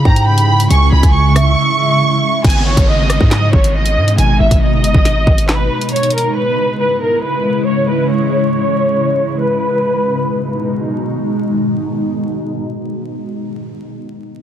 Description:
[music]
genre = hip hop, drill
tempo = 138 BPM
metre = 4/4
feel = half-time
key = G# minor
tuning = A4 = 440 Hz
[part]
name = warm symphonic violin section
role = melody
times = 0.0-10.7 s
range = A#4 to C#6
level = -16 LUFS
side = equal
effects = low-pass filter
[part]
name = warm velvety synth lead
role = second line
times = 0.0-2.4 s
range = E5 to G#5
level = -21 LUFS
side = right 2 dB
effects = chorus, digital delay
[part]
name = granular cloud pad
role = sustained chords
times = 0.0-13.5 s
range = B2 to E4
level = -18 LUFS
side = equal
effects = built-in reverb, low-pass filter
[part]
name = hard-hitting 808-style bass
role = bass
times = 0.0-5.7 s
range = G1 to G#2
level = -13 LUFS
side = equal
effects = none
[part]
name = drill drum kit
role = drums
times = 0.1-6.2 s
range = crash cymbal, handclaps, hi-hat, kick drum, rim click, snare drum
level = -13 LUFS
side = equal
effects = none
[part]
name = downlifter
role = sound effects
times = 2.4-5.9 s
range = none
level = -25 LUFS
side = right 1 dB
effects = none
[sound]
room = little or no reverb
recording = dense, heavily limited modern master, vinyl crackle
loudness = -11 LUFS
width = side -10 dB against mid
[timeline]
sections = 0.0-2.4 A section; 2.4-9.4 B section; 9.4-12.9 C section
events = break 1.6-2.4; filter sweep 2.4-9.4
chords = 0.0 C#m; 2.4 G#m; 5.9 C#m; 9.4 G#m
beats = 0.27 | 0.70 1.14 1.57 2.01 | 2.44 2.88 3.31 3.75 | 4.18 4.62 5.05 5.49 | 5.92 6.36 6.79 7.23 | 7.66 8.10 8.53 8.97 | 9.40 9.84 10.27 10.71 | 11.14 11.57 12.01 12.45

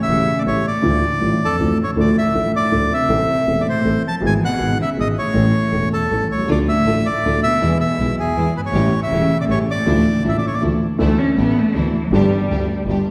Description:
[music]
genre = tango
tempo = 160 BPM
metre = 3/4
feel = rubato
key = D harmonic minor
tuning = A4 = 440 Hz
[part]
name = bandoneon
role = melody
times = 0.0-10.6 s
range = G#4 to A5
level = -23 LUFS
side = equal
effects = none
[part]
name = warm cello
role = second line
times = 0.0-12.8 s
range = E2 to C#4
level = -24 LUFS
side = equal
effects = none
[part]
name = dark concert grand piano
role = accompaniment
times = 0.1-13.0 s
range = E1 to A4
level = -22 LUFS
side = equal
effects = none
[part]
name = rich double bass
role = bass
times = 0.1-13.0 s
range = E1 to E2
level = -26 LUFS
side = equal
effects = none
[part]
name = bright studio string section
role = stabs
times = 6.5-13.0 s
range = F3 to G4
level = -32 LUFS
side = equal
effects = none
[sound]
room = wet concert hall reverb, RT60 1.9 s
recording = recorded in a church or concert hall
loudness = -18 LUFS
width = mono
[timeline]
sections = 0.0-2.0 A section; 2.0-11.0 A section; 11.0-13.1 B section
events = cello solo 11.0-13.1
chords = 0.0 A7; 0.8 Dmadd9; 2.0 Dm; 3.1 Am; 4.2 E/G#; 5.4 A; 6.5 Dm; 7.6 E; 8.7 A7; 9.9 Dmadd9; 11.0 Dsus2; 12.1 G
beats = 0.09 0.46 | 0.84 1.21 1.59 | 1.97 2.35 2.72 | 3.10 3.47 3.85 | 4.22 4.60 4.97 | 5.35 5.73 6.11 | 6.49 6.86 7.24 | 7.62 7.99 8.37 | 8.75 9.12 9.50 | 9.87 10.25 10.63 | 11.01 11.39 11.77 | 12.14 12.52 12.89

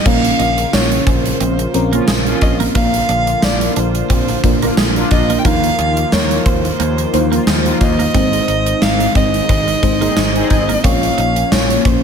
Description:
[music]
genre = 1980s-style pop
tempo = 89 BPM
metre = 4/4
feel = swing 55% on 16ths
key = unclear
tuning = A4 = 440 Hz
[part]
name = dark violin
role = melody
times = 0.0-12.0 s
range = C5 to G5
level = -20 LUFS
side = right 1 dB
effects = ping-pong delay
[part]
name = FM electric piano with soft pad layer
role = accompaniment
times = 0.0-12.0 s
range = Fb3 to Db5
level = -20 LUFS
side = left 1 dB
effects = chorus, phaser
[part]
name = lush unison pad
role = sustained chords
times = 0.0-12.0 s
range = Db3 to F4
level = -22 LUFS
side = equal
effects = chorus
[part]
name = twelve-string electric guitar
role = riff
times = 0.0-12.0 s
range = Ab3 to Eb4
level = -25 LUFS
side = right 8 dB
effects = lush chorus, ping-pong delay
[part]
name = modern bright picked electric bass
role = bass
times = 0.1-12.0 s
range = Ab1 to Eb2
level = -20 LUFS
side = equal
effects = none
[part]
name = gated 80s drum kit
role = drums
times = 0.1-12.0 s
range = crash cymbal, hi-hat, kick drum, snare drum, tambourine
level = -16 LUFS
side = equal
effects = gated reverb
[part]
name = mellow synth brass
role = stabs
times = 1.9-10.6 s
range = F3 to Ab4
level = -25 LUFS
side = left 1 dB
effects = chorus, ping-pong delay
[sound]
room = light reverb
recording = none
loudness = -12 LUFS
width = side -7 dB against mid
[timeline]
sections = 0.1-12.0 A section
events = none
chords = 0.1 Bbmadd9; 2.8 Bb; 5.5 Ebsus2; 8.1 Ab; 10.8 Bbm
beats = | 0.06 0.73 1.41 2.08 | 2.75 3.43 4.10 4.78 | 5.45 6.12 6.80 7.47 | 8.15 8.82 9.49 10.17 | 10.84 11.52

